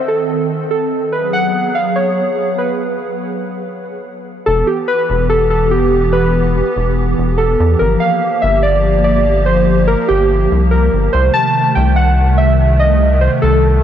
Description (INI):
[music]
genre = IDM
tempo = 144 BPM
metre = 4/4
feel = straight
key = E harmonic minor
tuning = A4 = 440 Hz
[part]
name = warbly lo-fi synth keys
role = melody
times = 0.0-13.8 s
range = G4 to A5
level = -15 LUFS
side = right 1 dB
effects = chorus, tape echo
[part]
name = hollow soft pad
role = sustained chords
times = 0.0-13.8 s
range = C3 to A4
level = -18 LUFS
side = equal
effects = ensemble chorus, vintage 12-bit sampler grit
[part]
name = rubbery square bass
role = bass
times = 4.5-13.8 s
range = E1 to E2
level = -14 LUFS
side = equal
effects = none
[sound]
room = light reverb, digital ambience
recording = none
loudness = -12 LUFS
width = side -10 dB against mid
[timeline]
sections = 0.0-4.5 A section; 4.5-13.8 B section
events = break 3.6-4.5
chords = 0.0 Cm6; 1.1 G#m7; 4.5 Em; 7.8 Gm7; 11.1 Cm6